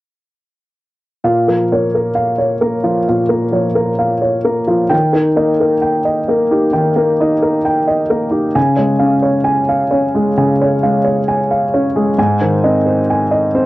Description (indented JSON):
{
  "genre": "neoclassical minimalist piano",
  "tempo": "66 BPM",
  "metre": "4/4",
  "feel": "rubato",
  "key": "Bb dorian",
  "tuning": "A4 = 438 Hz",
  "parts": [
    { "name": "warm upright piano", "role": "solo", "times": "1.2-13.7 s", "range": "Ab2 to Ab5", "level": "-12 LUFS", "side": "equal", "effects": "cassette tape" }
  ],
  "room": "moderate studio reverb, RT60 0.6 s",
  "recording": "home recording on cassette",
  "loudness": "-12 LUFS",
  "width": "side -18 dB against mid",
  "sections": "1.2-13.7 A section",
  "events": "none",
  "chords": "1.2 Bbm; 4.9 Eb; 8.6 Db; 12.2 Ab"
}